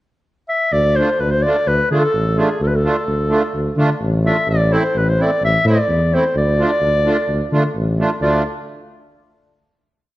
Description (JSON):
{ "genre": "klezmer", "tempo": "128 BPM", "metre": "4/4", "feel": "straight", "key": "D minor", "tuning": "A4 = 440 Hz", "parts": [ { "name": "mellow clarinet", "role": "melody", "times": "0.5-8.4 s", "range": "G#4 to E5", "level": "-18 LUFS", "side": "equal", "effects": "none" }, { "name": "warm tuba", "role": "bass", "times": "0.7-8.4 s", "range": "A1 to D3", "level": "-18 LUFS", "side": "equal", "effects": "none" }, { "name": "accordion", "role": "accompaniment", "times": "1.0-8.4 s", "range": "A3 to F4", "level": "-21 LUFS", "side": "right 2 dB", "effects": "light tremolo tuning" } ], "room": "moderate recital hall reverb, RT60 1.5 s", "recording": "none", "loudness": "-14 LUFS", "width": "side -16 dB against mid", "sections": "0.0-0.7 pickup bar; 0.7-8.2 A section; 8.2-10.1 final chord", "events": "none", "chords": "0.0 N.C.; 0.7 Dm; 4.5 Am; 6.4 Dm" }